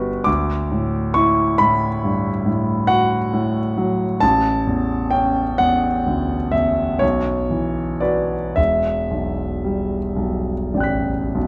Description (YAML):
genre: classical, impressionist solo piano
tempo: 32-46 BPM (dotted quarters)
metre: 9/8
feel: rubato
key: E dorian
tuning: A4 = 439 Hz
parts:
  - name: clear concert grand piano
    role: solo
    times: 0.0-11.5 s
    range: E1 to B6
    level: -20 LUFS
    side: equal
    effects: none
room: wet recital hall reverb, RT60 1.6 s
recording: dark, warm production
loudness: -20 LUFS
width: mono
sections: 0.0-11.5 A section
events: none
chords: 0.3 D69; 4.2 A6; 7.0 Bsus4; 8.6 Em9